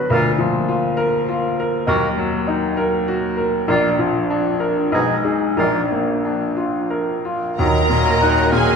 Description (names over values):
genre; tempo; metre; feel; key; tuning
classical, romantic movement for piano and orchestra; 89-103 BPM; 3/4; rubato; Eb minor; A4 = 440 Hz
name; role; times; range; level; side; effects
bright baby grand piano; melody; 0.0-8.8 s; Bb1 to B4; -19 LUFS; left 1 dB; none
warm cor anglais; second line; 0.0-8.8 s; Ab4 to Gb5; -26 LUFS; right 3 dB; none
mellow bassoon; accompaniment; 0.0-8.8 s; Gb3 to Cb4; -26 LUFS; right 4 dB; none
bright clarinet; second line; 0.1-8.8 s; Eb4 to Eb5; -27 LUFS; left 1 dB; none
mellow hollow small flute group; second line; 0.1-8.8 s; D5 to Bb5; -25 LUFS; left 2 dB; none
mellow French horn section; sustained chords; 0.1-7.8 s; F3 to Eb4; -24 LUFS; left 2 dB; none
warm symphonic violin section; second line; 7.6-8.8 s; Ab5 to Bb5; -23 LUFS; equal; none
clear trombone section; sustained chords; 7.6-7.8 s; Eb3 to Gb3; -27 LUFS; right 3 dB; none
rich studio double bass section; bass; 7.6-8.8 s; Eb2; -22 LUFS; right 4 dB; none
warm chamber cello section; bass; 7.6-8.8 s; Ab4 to Bb4; -23 LUFS; right 5 dB; none
rich chamber violin section; melody; 7.9-8.8 s; Eb5; -27 LUFS; right 1 dB; none
rich chamber viola section; accompaniment; 7.9-8.8 s; Gb3 to Bb4; -26 LUFS; right 3 dB; none
room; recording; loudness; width
wet scoring stage reverb, RT60 1.6 s; minimal, uncompressed stereo recording; -16 LUFS; side -6 dB against mid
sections
0.0-7.6 A section; 7.6-8.8 B section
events
none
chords
0.1 Bb/D; 1.9 Ebm; 3.7 Bb; 4.9 Abm/Cb; 5.6 Bb; 7.6 Ebm